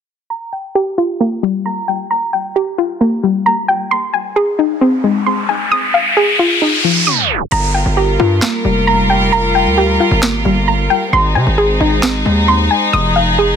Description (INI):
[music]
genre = hip hop, trap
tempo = 133 BPM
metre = 4/4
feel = half-time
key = G phrygian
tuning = A4 = 436 Hz
[part]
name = soft round pluck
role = arpeggios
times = 0.3-13.6 s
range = F3 to Eb6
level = -14 LUFS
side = left 1 dB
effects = chorus, low-pass filter, ping-pong delay
[part]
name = riser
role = sound effects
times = 5.0-7.5 s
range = none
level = -16 LUFS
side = equal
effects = none
[part]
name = clear studio string section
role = sustained chords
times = 7.5-13.6 s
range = F3 to Bb4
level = -16 LUFS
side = equal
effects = none
[part]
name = distorted 808-style bass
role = bass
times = 7.5-13.6 s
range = F1 to C3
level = -16 LUFS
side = equal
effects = distortion
[part]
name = electronic snare drum and handclaps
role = drums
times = 8.4-12.1 s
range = none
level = -19 LUFS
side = right 1 dB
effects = none
[sound]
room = light reverb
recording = dense, heavily limited modern master, tape stop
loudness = -12 LUFS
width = side -7 dB against mid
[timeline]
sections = 0.3-7.5 A section; 7.5-13.6 B section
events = filter sweep on synth pluck 0.3-7.5; riser 5.0-7.5; tape stop 7.1-7.5; hi-hats muted 7.5-13.6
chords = 0.3 Gm7; 3.9 Ab; 5.7 Fm7; 7.5 Gm7; 11.1 Ab; 12.9 Fm7